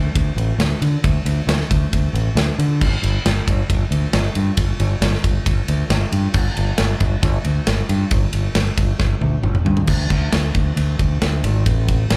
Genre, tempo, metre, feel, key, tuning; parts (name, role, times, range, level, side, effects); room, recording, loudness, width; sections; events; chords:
hard rock; 136 BPM; 4/4; straight; A4 = 439 Hz
growling fingered electric bass; bass; 0.0-12.2 s; G1 to D3; -21 LUFS; equal; overdrive
big rock drum kit; drums; 0.2-12.2 s; crash cymbal, kick drum, ride cymbal, snare drum, toms; -23 LUFS; equal
little or no reverb; live gig heard through the venue's PA, club reverb; -19 LUFS; mono
0.0-9.9 A section; 9.9-12.2 B section
drum fill 9.0-9.9